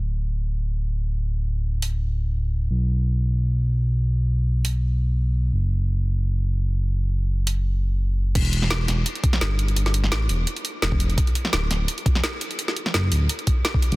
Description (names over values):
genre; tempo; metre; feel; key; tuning
liquid drum and bass; 170 BPM; 4/4; swing 54% on 16ths; E minor; A4 = 440 Hz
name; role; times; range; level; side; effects
smooth synth bass; bass; 0.0-14.0 s; D1 to B1; -21 LUFS; equal; tube saturation
drum and bass drum kit; drums; 1.8-1.9, 4.6-4.7, 7.5-14.0 s; crash cymbal, hi-hat, snare drum; -25 LUFS; equal; none
electronic kick drum; drums; 8.4-13.8 s; none; -21 LUFS; equal; none
room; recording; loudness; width
little or no reverb; dense, heavily limited modern master; -20 LUFS; side -21 dB against mid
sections
0.0-8.4 A section; 8.4-14.0 B section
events
drop 8.4-14.0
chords
none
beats
0.24 0.59 0.94 | 1.29 1.65 2.00 2.35 | 2.71 3.06 3.41 3.77 | 4.12 4.47 4.82 5.18 | 5.53 5.88 6.24 6.59 | 6.94 7.29 7.65 8.00 | 8.35 8.71 9.06 9.41 | 9.77 10.12 10.47 10.82 | 11.18 11.53 11.88 12.24 | 12.59 12.94 13.29 13.65